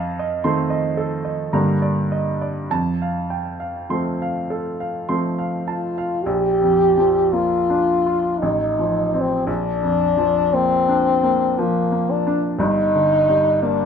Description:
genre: classical, romantic duo for French horn and grand piano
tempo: 50-60 BPM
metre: 3/4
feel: rubato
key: Bb major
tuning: A4 = 440 Hz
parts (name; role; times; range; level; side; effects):
- clear baby grand piano; accompaniment; 0.0-13.9 s; G1 to C6; -21 LUFS; right 1 dB; none
- warm French horn; melody; 5.7-13.9 s; Bb3 to G4; -17 LUFS; left 2 dB; none
room: moderate large studio reverb, RT60 0.8 s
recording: nothing above 10.7 kHz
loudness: -17 LUFS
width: side -7 dB against mid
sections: 0.0-6.2 A section; 6.2-13.9 B section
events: none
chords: 0.0 F7; 1.6 Gm; 2.7 F; 6.2 Bb; 8.4 F7/A; 9.5 Bb; 12.6 Gm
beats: 0.46 1.55 | 2.72 3.91 5.09 | 6.25 7.34 8.42 | 9.48 10.54 11.59 | 12.60 13.63

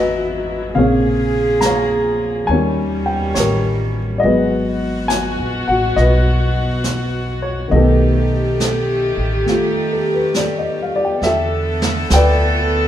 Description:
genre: jazz ballad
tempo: 69 BPM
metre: 4/4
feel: swing 68% on 8ths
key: unclear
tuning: A4 = 440 Hz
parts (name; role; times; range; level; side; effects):
- dark grand piano; accompaniment; 0.0-12.9 s; B#2 to B5; -18 LUFS; left 2 dB; none
- clear studio string section; sustained chords; 0.0-12.9 s; B2 to A4; -21 LUFS; right 1 dB; none
- upright bass; bass; 0.0-12.9 s; G#1 to E2; -19 LUFS; equal; none
- jazz brush drum kit; drums; 0.7-12.9 s; brushed snare drum, hi-hat, snare drum; -23 LUFS; right 3 dB; none
room: wet stone room reverb, RT60 1.3 s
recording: band playing live in one room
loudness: -14 LUFS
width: side -11 dB against mid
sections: 0.0-11.2 A section; 11.2-12.9 B section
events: break 9.5-11.2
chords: 0.0 C#m11; 0.8 A#m9; 2.5 D#7; 4.2 G#m7; 7.7 Baug7; 11.2 Em11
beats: | 0.75 1.62 2.49 3.35 | 4.22 5.10 5.96 6.83 | 7.71 8.58 9.46 10.34 | 11.23 12.11

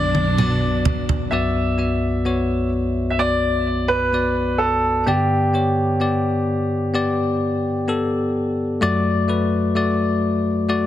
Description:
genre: pop ballad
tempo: 64 BPM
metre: 4/4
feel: straight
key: B minor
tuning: A4 = 439 Hz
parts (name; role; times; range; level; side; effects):
- clear baby grand piano; melody; 0.0-7.8 s; G4 to E5; -22 LUFS; right 1 dB; digital delay
- bell-like tine electric piano; accompaniment; 0.0-10.9 s; B1 to E5; -19 LUFS; left 1 dB; none
- warm studio string section; sustained chords; 0.0-1.3 s; B2 to D4; -26 LUFS; right 3 dB; none
- picked steel-string acoustic guitar; arpeggios; 0.0-1.8 s; F#3 to F#4; -36 LUFS; right 1 dB; none
- toms; drums; 0.1-1.3 s; none; -22 LUFS; right 1 dB; none
room: moderate plate reverb, RT60 2.6 s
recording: dense, heavily limited modern master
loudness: -18 LUFS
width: side -12 dB against mid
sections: 0.0-1.3 A section; 1.3-10.9 B section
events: drum fill 0.0-1.3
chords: 0.0 Bm; 5.1 G; 8.8 D/F#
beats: 0.39 | 1.33 2.27 3.20 4.14 | 5.08 6.01 6.95 7.89 | 8.83 9.77 10.70

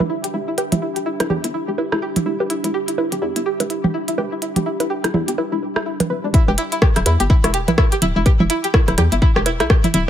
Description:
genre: minimal techno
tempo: 125 BPM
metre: 4/4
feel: swing 59% on 16ths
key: E minor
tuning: A4 = 439 Hz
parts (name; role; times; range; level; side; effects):
- string-like resonator pluck; riff; 0.0-10.0 s; D4 to B4; -22 LUFS; equal; chorus, phaser, sidechain pumping, digital delay
- hollow knocking FM bass; bass; 0.0-10.1 s; D1 to E2; -21 LUFS; equal; sidechain pumping, high-pass filter
- booming analog drum machine; percussion; 0.0-9.9 s; bongos, rim click, toms; -22 LUFS; right 4 dB; ping-pong delay
- deep dark ambient pad; texture; 0.0-6.3 s; D4 to B5; -28 LUFS; equal; chorus, built-in reverb, sidechain pumping
- minimal click drum kit; drums; 0.2-10.1 s; hi-hat, rim click; -22 LUFS; equal; overdrive
- electronic kick drum; drums; 6.3-9.8 s; none; -14 LUFS; equal; none
room: light reverb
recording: none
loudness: -16 LUFS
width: side -10 dB against mid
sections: 0.0-6.3 A section; 6.3-10.1 B section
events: drop 6.3-10.1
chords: 0.0 Em7; 6.3 N.C.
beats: 0.10 | 0.58 1.06 1.54 2.02 | 2.50 2.98 3.46 3.94 | 4.42 4.90 5.38 5.86 | 6.34 6.82 7.30 7.78 | 8.26 8.74 9.22 9.70

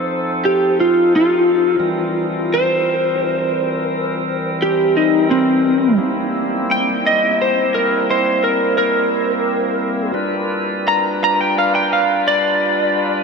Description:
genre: blues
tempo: 57 BPM (dotted quarters)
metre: 12/8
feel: straight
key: C mixolydian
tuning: A4 = 440 Hz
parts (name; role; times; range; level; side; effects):
- lightly driven lead guitar; melody; 0.0-13.2 s; C4 to Bb5; -16 LUFS; equal; wide subtle chorus
- bright tonewheel organ; sustained chords; 0.0-13.2 s; E3 to B4; -21 LUFS; equal; slow rotary speaker
room: wet huge ambient reverb, RT60 7.9 s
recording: dreamy mix soaked in reverb, faint mains hum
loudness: -14 LUFS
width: side -5 dB against mid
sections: 0.0-13.2 A section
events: lead electric guitar solo 0.0-13.2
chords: 0.0 F7; 1.8 C7; 10.2 G7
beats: 0.76 | 1.80 2.85 3.89 4.93 | 5.98 7.02 8.07 9.11 | 10.16 11.20 12.25

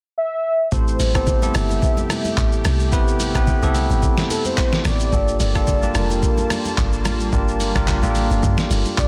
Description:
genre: amapiano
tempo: 109 BPM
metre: 4/4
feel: swing 55% on 16ths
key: A phrygian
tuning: A4 = 436 Hz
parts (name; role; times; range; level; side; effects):
- warm velvety synth lead; melody; 0.2-9.1 s; A4 to E5; -26 LUFS; equal; chorus, tape echo
- bell-like tine electric piano; accompaniment; 0.7-9.1 s; A3 to A5; -27 LUFS; equal; none
- warm analog pad; sustained chords; 1.4-9.1 s; C3 to A5; -32 LUFS; equal; chorus, phaser, sidechain pumping
- deep log drum bass; bass; 0.7-9.1 s; F1 to G2; -23 LUFS; equal; none
- dusty soul sampler-style drum kit; drums; 0.7-9.1 s; handclaps, hi-hat, kick drum, rim click, shaker, snare drum; -23 LUFS; equal; soft clipping on snare
- congas; percussion; 1.0-9.0 s; none; -32 LUFS; equal; none
room: digital ambience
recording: dense, heavily limited modern master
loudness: -19 LUFS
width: mono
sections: 0.7-9.1 A section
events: drop 0.7-9.1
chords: 0.0 N.C.; 0.7 Am9; 5.1 Gm9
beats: 0.17 | 0.72 1.27 1.82 2.37 | 2.92 3.47 4.02 4.57 | 5.12 5.67 6.23 6.78 | 7.33 7.88 8.43 8.98

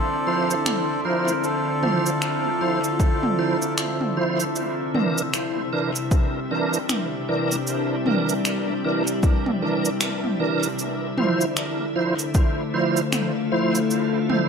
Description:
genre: ambient dub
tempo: 77 BPM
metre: 4/4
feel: swing 60% on 16ths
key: unclear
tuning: A4 = 440 Hz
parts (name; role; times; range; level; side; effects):
- melodica; melody; 0.0-3.7 s; A4 to Bb4; -28 LUFS; equal; dub echo
- soft additive organ-like pad; sustained chords; 0.0-14.5 s; C3 to F4; -25 LUFS; left 2 dB; ensemble chorus, built-in reverb
- drifting glass-harmonics texture; texture; 0.0-4.6 s; D4 to D5; -40 LUFS; left 1 dB; none
- tonewheel organ; stabs; 0.3-14.5 s; E3 to C5; -25 LUFS; right 2 dB; chorus vibrato, slow rotary speaker, dub echo
- organic electronic drum kit; drums; 0.5-14.5 s; cabasa, finger snaps, toms; -26 LUFS; right 1 dB; overdrive, studio reverb, dub echo
- electronic kick drum; drums; 3.0-12.5 s; none; -20 LUFS; equal; studio reverb
room: moderate echo chamber reverb, RT60 2.1 s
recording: none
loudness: -20 LUFS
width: side -6 dB against mid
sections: 0.0-4.6 A section; 4.6-14.5 B section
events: none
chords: 0.0 Dm9; 4.6 C9; 10.8 Dm9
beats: 0.66 | 1.44 2.22 3.00 3.78 | 4.55 5.33 6.11 6.89 | 7.67 8.45 9.23 10.01 | 10.79 11.57 12.35 13.13 | 13.91

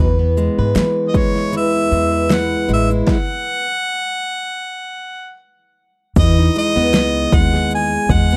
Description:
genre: acoustic pop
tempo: 78 BPM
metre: 4/4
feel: swing 55% on 16ths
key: E major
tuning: A4 = 439 Hz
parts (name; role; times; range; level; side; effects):
- picked plugged-in steel-string acoustic guitar; accompaniment; 0.0-8.4 s; E3 to B4; -21 LUFS; equal; none
- upright bass; bass; 0.0-8.4 s; A1 to E3; -21 LUFS; equal; none
- deep house drum kit; drums; 0.4-8.4 s; crash cymbal, kick drum, shaker, snare drum; -19 LUFS; equal; overdrive
- bright harmonica; melody; 1.1-8.4 s; C#5 to G#5; -22 LUFS; equal; none
room: small room ambience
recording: dry, close 1970s-style studio recording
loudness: -17 LUFS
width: mono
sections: 0.0-6.2 A section; 6.2-8.4 B section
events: stop 3.1-6.2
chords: 0.0 E; 3.1 N.C.; 6.2 Emaj7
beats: 0.76 1.53 2.30 | 3.07 3.85 4.62 5.39 | 6.17 6.94 7.71

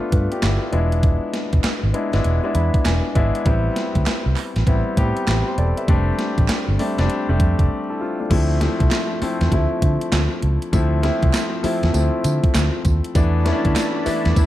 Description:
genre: R&B, new jack swing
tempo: 99 BPM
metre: 4/4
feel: swing 64% on 16ths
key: unclear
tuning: A4 = 439 Hz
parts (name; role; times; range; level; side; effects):
- warm concert grand piano; accompaniment; 0.0-14.5 s; E3 to B5; -22 LUFS; left 2 dB; none
- vintage muted fingered electric bass; bass; 0.1-14.5 s; E1 to D3; -19 LUFS; equal; none
- gated 80s digital drum machine; drums; 0.1-14.5 s; crash cymbal, handclaps, hi-hat, kick drum, snare drum, tambourine; -21 LUFS; equal; gated reverb, gated reverb snare, overdrive
- group handclap; percussion; 0.4-13.9 s; none; -32 LUFS; right 11 dB; none
- lush unison pad; sustained chords; 13.1-14.5 s; E4 to B5; -28 LUFS; right 4 dB; chorus
room: digital ambience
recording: dark, warm production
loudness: -17 LUFS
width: side -14 dB against mid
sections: 0.0-8.3 A section; 8.3-14.5 B section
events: grand piano fill 2.2-3.5; break 7.7-8.3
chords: 0.0 G7; 0.7 E7; 3.5 Am7; 5.9 F6; 8.3 Dm7; 13.2 E7sus4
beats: 0.43 | 1.03 1.64 2.25 2.85 | 3.46 4.06 4.67 5.28 | 5.88 6.49 7.09 7.70 | 8.31 8.91 9.52 10.12 | 10.73 11.34 11.94 12.55 | 13.15 13.76 14.37

